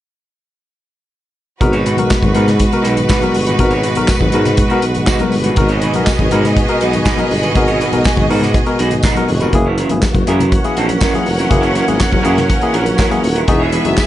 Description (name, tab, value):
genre	disco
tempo	121 BPM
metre	4/4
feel	straight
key	G# minor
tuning	A4 = 440 Hz
part	clear studio string section	second line	1.6-14.1 s	G#3 to F#5	-19 LUFS	right 1 dB	none
part	barky tine electric piano	accompaniment	1.6-14.0 s	G#2 to A#4	-20 LUFS	left 3 dB	none
part	electric guitar through a small old amp	accompaniment	1.6-14.0 s	C#4 to C#5	-22 LUFS	right 4 dB	lush chorus
part	tonewheel organ	sustained chords	1.6-14.1 s	B2 to F#4	-21 LUFS	right 1 dB	overdrive, chorus vibrato, slow rotary speaker
part	mellow tuba	bass	1.6-13.9 s	D#1 to G#2	-18 LUFS	equal	none
part	warm soul drum kit	drums	1.6-14.1 s	handclaps, hi-hat, kick drum, snare drum	-17 LUFS	equal	gated reverb
part	congas	percussion	1.6-14.0 s	none	-24 LUFS	left 5 dB	none
part	tambourine	percussion	2.1-14.1 s	none	-28 LUFS	right 6 dB	none
room	light reverb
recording	nothing above 10.7 kHz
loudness	-11 LUFS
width	side -13 dB against mid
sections	1.6-14.1 A section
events	none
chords	1.6 G#m7; 9.5 F#7; 13.5 Emaj7